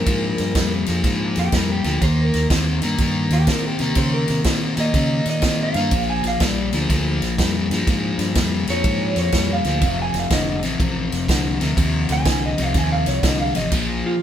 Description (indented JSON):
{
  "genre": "electric blues shuffle",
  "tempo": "123 BPM",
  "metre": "4/4",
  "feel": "swing 65% on 8ths",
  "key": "Bb mixolydian",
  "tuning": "A4 = 440 Hz",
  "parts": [
    { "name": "electric guitar through a small old amp", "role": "melody", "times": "0.0-14.2 s", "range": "F4 to Ab5", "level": "-25 LUFS", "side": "right 3 dB", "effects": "none" },
    { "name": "overdriven semi-hollow guitar", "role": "riff", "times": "0.0-14.1 s", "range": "F2 to C4", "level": "-22 LUFS", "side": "left 3 dB", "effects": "none" },
    { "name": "fingered electric bass", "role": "bass", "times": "0.0-14.0 s", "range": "F1 to Db3", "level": "-24 LUFS", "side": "equal", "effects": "none" },
    { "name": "swinging big-band drum kit", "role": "drums", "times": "0.1-13.9 s", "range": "crash cymbal, kick drum, ride cymbal, snare drum", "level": "-23 LUFS", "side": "right 1 dB", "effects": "none" }
  ],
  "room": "light reverb",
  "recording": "band playing live in one room",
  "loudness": "-17 LUFS",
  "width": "side -10 dB against mid",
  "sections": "0.0-14.2 A section",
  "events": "none",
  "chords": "0.0 Bb7(no3); 2.0 Eb7; 5.9 Bb7; 9.8 F7; 13.7 Bb5",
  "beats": "| 0.07 0.56 1.05 1.53 | 2.02 2.51 2.99 3.48 | 3.97 4.46 4.94 5.43 | 5.92 6.41 6.89 7.38 | 7.87 8.36 8.85 9.33 | 9.82 10.31 10.79 11.28 | 11.77 12.26 12.74 13.23 | 13.72 14.21"
}